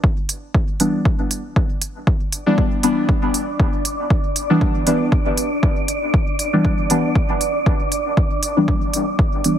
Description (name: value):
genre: dub techno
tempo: 118 BPM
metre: 4/4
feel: swing 55% on 16ths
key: E minor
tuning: A4 = 440 Hz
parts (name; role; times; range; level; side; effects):
- electronic kick drum; drums; 0.0-9.3 s; none; -18 LUFS; equal; none
- electronic hi-hat; drums; 0.3-9.6 s; none; -21 LUFS; right 2 dB; none
- deep mellow chord stab; stabs; 0.8-9.6 s; E3 to D4; -20 LUFS; left 1 dB; chorus, phaser, cassette tape, sidechain pumping, dub echo
- wind-like tuned noise texture; texture; 2.8-9.6 s; D4 to D5; -24 LUFS; right 1 dB; built-in reverb, sidechain pumping
room: light reverb, digital ambience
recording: heavily compressed radio sound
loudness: -16 LUFS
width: side -10 dB against mid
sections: 0.0-9.6 A section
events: none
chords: 0.0 Em7